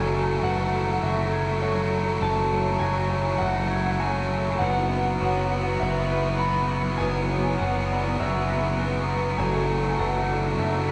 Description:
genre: post-rock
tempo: 100 BPM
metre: 4/4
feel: straight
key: F# minor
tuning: A4 = 440 Hz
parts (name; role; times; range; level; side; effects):
- electric slide guitar; melody; 0.0-10.9 s; C#5 to B5; -32 LUFS; equal; none
- rich chamber string section; sustained chords; 0.0-10.9 s; F#3 to A4; -40 LUFS; equal; none
- twangy electric guitar; arpeggios; 0.0-10.9 s; F#3 to C#5; -37 LUFS; equal; none
- vibraphone with soft mallets; arpeggios; 0.0-10.9 s; A4 to E5; -34 LUFS; equal; none
- overdriven electric guitar; riff; 0.0-10.9 s; F#3 to B3; -30 LUFS; equal; none
- growling picked electric bass; bass; 0.0-10.9 s; F#1; -29 LUFS; equal; overdrive
room: wet recital hall reverb, RT60 1.4 s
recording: recorded in a church or concert hall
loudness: -25 LUFS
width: mono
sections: 0.0-10.9 A section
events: none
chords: 0.0 F#m7; 4.6 Bsus4/F#; 9.4 D6/F#

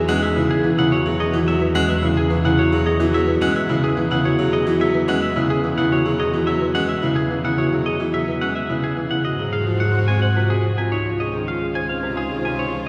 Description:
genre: classical, minimalist pattern music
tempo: 108 BPM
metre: 3/4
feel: straight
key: E major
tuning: A4 = 440 Hz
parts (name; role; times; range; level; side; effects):
- alto flute; second line; 0.0-0.7, 9.3-12.9 s; F4 to G#4; -33 LUFS; equal; none
- warm studio string section; sustained chords; 0.0-0.7, 9.2-12.9 s; D#4 to B#4; -35 LUFS; equal; none
- buzzing marimba with medium mallets; arpeggios; 0.0-12.9 s; B#3 to B#4; -24 LUFS; equal; none
- clear double bass; bass; 0.0-12.9 s; Db2 to G#2; -26 LUFS; equal; none
- clean electric guitar; melody; 0.1-12.9 s; G#4 to G#5; -28 LUFS; equal; none
- bright grand piano; accompaniment; 0.1-12.9 s; B#2 to G#3; -26 LUFS; equal; none
room: wet church reverb, RT60 3.0 s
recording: recorded in a church or concert hall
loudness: -20 LUFS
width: mono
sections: 0.0-10.9 A section; 10.9-12.9 B section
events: none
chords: 0.0 Eadd9; 9.2 G#7; 10.9 Dbmaj7

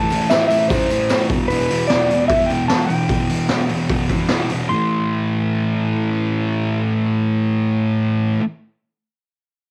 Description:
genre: garage rock duo or trio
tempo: 150 BPM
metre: 4/4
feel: straight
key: A minor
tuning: A4 = 439 Hz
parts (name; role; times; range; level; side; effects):
- clean lap steel guitar; melody; 0.0-8.3 s; B4 to C6; -22 LUFS; equal; cassette tape
- thick fuzz guitar; riff; 0.0-8.4 s; E2 to A3; -21 LUFS; equal; distortion, cassette tape
- raw garage drum kit; drums; 0.1-4.6 s; hi-hat, kick drum, snare drum; -24 LUFS; equal; none
- tambourine; percussion; 0.1-1.2 s; none; -41 LUFS; equal; none
room: light reverb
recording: home recording on cassette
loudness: -19 LUFS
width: mono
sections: 0.0-4.7 A section; 4.7-7.9 B section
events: none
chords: 0.0 Am; 1.3 Em; 4.7 Am

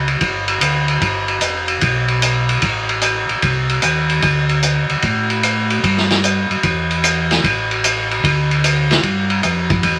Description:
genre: soul jazz organ trio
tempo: 150 BPM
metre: 4/4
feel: swing 67% on 8ths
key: G mixolydian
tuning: A4 = 436 Hz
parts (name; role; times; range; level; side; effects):
- mellow tonewheel organ; bass; 0.0-10.0 s; F1 to A2; -22 LUFS; equal; slow rotary speaker
- vintage drum kit; drums; 0.1-10.0 s; hi-hat, kick drum, ride cymbal, snare drum; -18 LUFS; equal; none
room: moderate studio ambience, RT60 0.5 s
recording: none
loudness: -17 LUFS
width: mono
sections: 0.0-9.0 A section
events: none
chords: none

